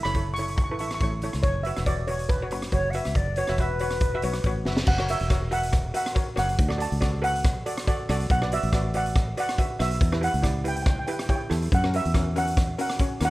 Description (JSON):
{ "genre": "calypso", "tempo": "140 BPM", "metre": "4/4", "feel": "swing 54% on 16ths", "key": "unclear", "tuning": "A4 = 441 Hz", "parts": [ { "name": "steel pan", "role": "melody", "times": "0.0-13.3 s", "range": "B4 to C#6", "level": "-29 LUFS", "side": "right 2 dB", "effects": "none" }, { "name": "raw garage drum kit", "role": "drums", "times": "0.0-13.3 s", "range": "crash cymbal, hi-hat, kick drum, rim click, snare drum", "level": "-26 LUFS", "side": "equal", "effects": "none" }, { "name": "steel pan", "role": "accompaniment", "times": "0.1-13.3 s", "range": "C#4 to E5", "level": "-32 LUFS", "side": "equal", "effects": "none" }, { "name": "fingered electric bass", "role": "bass", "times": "0.1-13.3 s", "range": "E1 to F#2", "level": "-28 LUFS", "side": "equal", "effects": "none" }, { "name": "concert flute", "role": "second line", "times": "2.7-4.5 s", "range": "B4 to F#5", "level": "-29 LUFS", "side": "equal", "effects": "none" } ], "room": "small room ambience", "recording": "rough home demo mix", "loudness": "-22 LUFS", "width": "side -18 dB against mid", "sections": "0.0-4.9 A section; 4.9-13.3 B section", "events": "drum fill 4.7", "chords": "0.0 A; 1.4 F#sus4; 4.9 F#; 6.6 D; 8.3 Bm7; 10.0 Emadd9; 11.7 F#" }